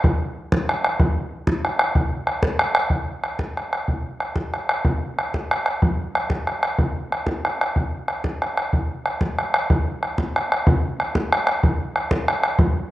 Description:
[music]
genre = celtic folk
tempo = 124 BPM (dotted quarters)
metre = 6/8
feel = straight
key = none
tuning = none
[part]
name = bodhran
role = percussion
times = 0.0-12.7 s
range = none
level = -20 LUFS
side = equal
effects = none
[sound]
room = little or no reverb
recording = recorded outdoors, with no room sound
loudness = -20 LUFS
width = side -15 dB against mid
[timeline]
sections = 0.0-2.9 A section; 2.9-10.7 B section; 10.7-12.9 B section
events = none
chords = none

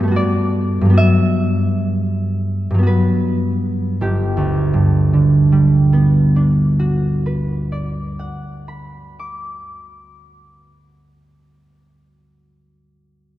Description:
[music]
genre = classical, solo harp piece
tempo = 50-78 BPM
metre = 3/4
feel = rubato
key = G major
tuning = A4 = 436 Hz
[part]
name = concert harp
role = solo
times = 0.0-11.9 s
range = G1 to D6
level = -14 LUFS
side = right 1 dB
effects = none
[sound]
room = wet church reverb, RT60 2.9 s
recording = none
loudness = -14 LUFS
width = side -14 dB against mid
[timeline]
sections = 0.0-4.0 A section; 4.0-10.5 B section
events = slowing down 0.0-4.0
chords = 0.0 Gmaj9; 1.0 Emadd9/G; 4.0 Gmaj7

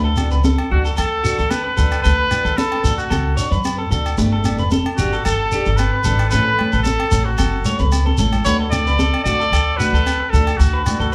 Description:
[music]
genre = highlife guitar band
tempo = 112 BPM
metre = 4/4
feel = straight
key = D major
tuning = A4 = 445 Hz
[part]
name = fingerpicked steel-string acoustic guitar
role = accompaniment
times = 0.0-11.0 s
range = E3 to A4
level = -28 LUFS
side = equal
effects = none
[part]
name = electric guitar through a small old amp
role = arpeggios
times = 0.0-11.1 s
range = F#4 to C#5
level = -27 LUFS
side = equal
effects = none
[part]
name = upright bass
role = bass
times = 0.0-11.1 s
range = E1 to F#2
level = -21 LUFS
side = equal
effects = none
[part]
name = agogo bells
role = percussion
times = 0.2-11.0 s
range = none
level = -33 LUFS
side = equal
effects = none
[part]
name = congas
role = percussion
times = 0.2-11.0 s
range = none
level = -27 LUFS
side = equal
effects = none
[part]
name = shekere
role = percussion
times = 0.2-11.1 s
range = none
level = -28 LUFS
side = equal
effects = none
[part]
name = clear trumpet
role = melody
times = 0.7-11.1 s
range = F#4 to D5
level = -23 LUFS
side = equal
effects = none
[sound]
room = moderate large studio reverb, RT60 1.2 s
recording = band playing live in one room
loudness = -17 LUFS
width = mono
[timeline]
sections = 0.0-11.1 A section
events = drum fill 7.8-8.5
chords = 0.0 D; 4.2 Gsus2; 6.3 A; 8.5 D

